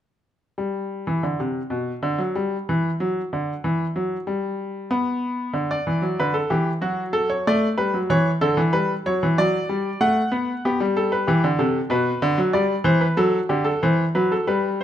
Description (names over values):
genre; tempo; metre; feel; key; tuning
classical, baroque-style two-part invention for grand piano; 94 BPM; 4/4; straight; G major; A4 = 441 Hz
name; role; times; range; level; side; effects
bright baby grand piano; solo; 0.6-14.8 s; B2 to F#5; -20 LUFS; equal; none
room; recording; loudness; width
moderate recital hall reverb, RT60 1.3 s; close, detailed microphones; -20 LUFS; side -10 dB against mid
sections
0.4-14.8 A section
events
none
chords
0.4 N.C.; 5.6 D; 6.8 D/F#; 8.1 C#dim; 9.4 D/F#; 10.6 G; 11.9 G/B; 13.2 F#dim